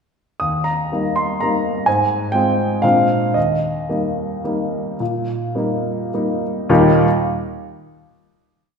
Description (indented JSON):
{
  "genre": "classical, piano waltz",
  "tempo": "100-135 BPM",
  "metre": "3/4",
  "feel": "rubato",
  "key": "Eb major",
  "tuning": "A4 = 441 Hz",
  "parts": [
    { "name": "warm baby grand piano", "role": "solo", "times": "0.4-7.1 s", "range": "Eb2 to Eb6", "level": "-16 LUFS", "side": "equal", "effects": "none" }
  ],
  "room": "wet recital hall reverb, RT60 1.4 s",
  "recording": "minimal, uncompressed stereo recording",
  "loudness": "-16 LUFS",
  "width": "side -5 dB against mid",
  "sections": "0.4-6.7 A section; 6.7-8.2 final chord",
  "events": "slowing down 2.6-6.7",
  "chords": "0.4 Eb; 1.9 Fm/Ab; 2.8 Bb9; 3.4 Eb"
}